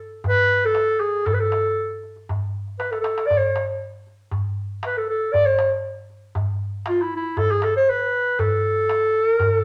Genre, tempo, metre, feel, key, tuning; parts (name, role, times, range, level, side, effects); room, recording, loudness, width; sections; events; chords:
Arabic maqam ensemble; 118 BPM; 4/4; straight; A maqam suznak; A4 = 440 Hz
darbuka; percussion; 0.2-9.5 s; -29 LUFS; equal
mellow clarinet; melody; 0.3-9.6 s; E4 to D5; -22 LUFS; equal
wet studio reverb, RT60 0.9 s; -22 LUFS; mono
0.0-9.6 A section
drum fill 2.8-3.3